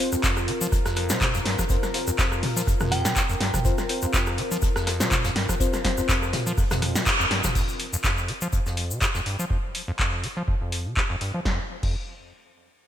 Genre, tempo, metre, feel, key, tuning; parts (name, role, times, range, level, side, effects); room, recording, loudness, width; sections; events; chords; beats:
acid house; 123 BPM; 4/4; swing 55% on 16ths; A4 = 440 Hz
warbly tape-like pad; sustained chords; 0.0-7.5 s; C3 to Bb4; -33 LUFS; left 1 dB; chorus, built-in reverb, sidechain pumping
deep mellow chord stab; stabs; 0.0-6.1 s; C4 to C5; -32 LUFS; left 2 dB; chorus, ping-pong delay
acid bass, square; riff; 0.1-12.0 s; F2 to F3; -29 LUFS; equal; sidechain pumping, ping-pong delay
punchy analog drum machine; drums; 0.1-12.0 s; crash cymbal, handclaps, hi-hat, rim click, snare drum, toms; -26 LUFS; equal
egg shaker; percussion; 0.1-9.5 s; -34 LUFS; left 4 dB
electronic kick drum; drums; 0.2-12.0 s; -26 LUFS; equal
vintage brush drum kit; drums; 0.2-9.4 s; hi-hat, snare drum; -36 LUFS; left 2 dB
glassy synth bell; melody; 2.9-3.6 s; G5; -33 LUFS; right 3 dB; chorus, phaser, vintage 12-bit sampler grit, ping-pong delay
light reverb, digital ambience; bright 1980s-style digital production; -22 LUFS; side -11 dB against mid
0.0-7.6 A section; 7.6-11.5 B section; 11.5-12.9 C section
drop 0.0-7.6; band accent 7.1
0.0 F5; 11.5 N.C.
0.23 0.72 1.21 | 1.70 2.19 2.67 3.16 | 3.65 4.14 4.62 5.11 | 5.60 6.09 6.58 7.06 | 7.55 8.04 8.53 9.02 | 9.50 9.99 10.48 10.97 | 11.45 11.94